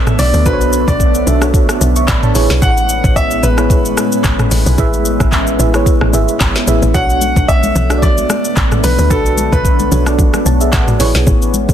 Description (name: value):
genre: amapiano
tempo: 111 BPM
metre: 4/4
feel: swing 55% on 16ths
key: B dorian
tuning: A4 = 440 Hz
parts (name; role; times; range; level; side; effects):
- clear concert grand piano; melody; 0.0-10.0 s; A4 to F#5; -18 LUFS; left 1 dB; ping-pong delay
- mellow FM electric piano; accompaniment; 0.0-11.7 s; D4 to C#6; -19 LUFS; right 3 dB; chorus, tremolo
- deep dark ambient pad; sustained chords; 0.0-11.7 s; A2 to D4; -19 LUFS; left 1 dB; chorus, built-in reverb, sidechain pumping
- woody log drum bass; bass; 0.0-11.7 s; G#1 to D2; -15 LUFS; equal; none
- afro-pop drum kit; drums; 0.1-11.7 s; handclaps, hi-hat, kick drum, rim click, shaker, snare drum, toms; -15 LUFS; equal; none
- congas; percussion; 7.2-11.7 s; none; -22 LUFS; left 4 dB; none
room: little or no reverb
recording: dense, heavily limited modern master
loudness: -10 LUFS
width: side -10 dB against mid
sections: 0.0-11.7 A section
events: none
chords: 0.0 Bm9; 2.4 Amaj9; 6.9 Bm9